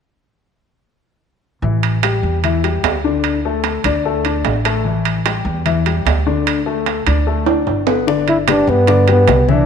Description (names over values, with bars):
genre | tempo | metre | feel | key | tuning
Afro-Cuban jazz | 149 BPM | 4/4 | straight | G major | A4 = 439 Hz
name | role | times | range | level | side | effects
warm upright piano | accompaniment | 1.6-9.7 s | D3 to E5 | -18 LUFS | left 7 dB | none
upright bass | bass | 1.6-9.7 s | G1 to G2 | -18 LUFS | right 2 dB | none
timbales | percussion | 1.8-9.5 s | none | -20 LUFS | right 11 dB | none
bongos | percussion | 8.1-9.7 s | none | -27 LUFS | left 9 dB | none
congas | percussion | 8.1-9.7 s | none | -22 LUFS | left 10 dB | none
breathy trombone | melody | 8.3-9.7 s | B3 to E4 | -13 LUFS | equal | none
room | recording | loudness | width
moderate echo chamber reverb, RT60 1.7 s, small room ambience | 1960s-style stereo with parts hard left and right | -14 LUFS | side -7 dB against mid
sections
1.6-8.1 A section; 8.1-9.7 B section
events
drum fill 7.5-8.1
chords
1.6 A5; 3.2 D5; 4.9 A5; 6.5 D5; 8.1 G6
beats
| 1.63 2.04 2.44 2.84 | 3.24 3.65 4.05 4.45 | 4.85 5.26 5.66 6.06 | 6.47 6.87 7.27 7.67 | 8.08 8.48 8.88 9.29